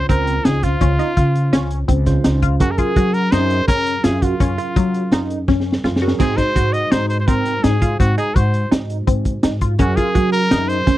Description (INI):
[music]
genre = progressive instrumental, band music in an uneven meter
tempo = 167 BPM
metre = 5/4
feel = straight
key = Gb lydian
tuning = A4 = 440 Hz
[part]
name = clear trumpet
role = melody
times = 0.0-11.0 s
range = F4 to Eb5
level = -21 LUFS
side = equal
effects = none
[part]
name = barky tine electric piano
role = accompaniment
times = 0.0-11.0 s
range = Db3 to C5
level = -26 LUFS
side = right 5 dB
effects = overdrive, phaser
[part]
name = upright bass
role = bass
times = 0.0-11.0 s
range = Db2 to Gb3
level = -19 LUFS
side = equal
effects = none
[part]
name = tight sequenced synth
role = arpeggios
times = 0.1-11.0 s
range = Gb3 to Gb4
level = -23 LUFS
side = equal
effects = chorus
[part]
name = crunchy breakbeat drum kit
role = drums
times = 0.1-11.0 s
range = crash cymbal, hi-hat, kick drum, snare drum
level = -18 LUFS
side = equal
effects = none
[sound]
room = little or no reverb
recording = dry, close 1970s-style studio recording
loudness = -15 LUFS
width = side -15 dB against mid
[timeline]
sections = 0.0-11.0 A section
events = drum fill 5.5-6.2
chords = 0.0 Dbmaj7; 2.6 Gbadd9; 6.2 Ab7; 9.8 Gbadd9